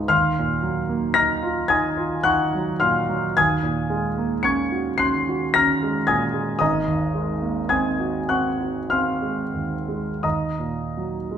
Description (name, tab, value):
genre	classical, impressionist solo piano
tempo	42-57 BPM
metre	3/4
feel	rubato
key	Eb dorian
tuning	A4 = 442 Hz
part	warm concert grand piano	solo	0.0-11.4 s	Ab1 to Db7	-20 LUFS	equal	none
room	wet recital hall reverb, RT60 1.5 s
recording	minimal, uncompressed stereo recording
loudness	-20 LUFS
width	side -8 dB against mid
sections	0.0-11.4 A section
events	none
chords	0.1 Ebmadd9; 6.6 Ab9; 10.2 Ebm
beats	| 0.11 1.18 2.28 | 3.37 4.44 5.54 | 6.60 7.71 8.90 | 10.23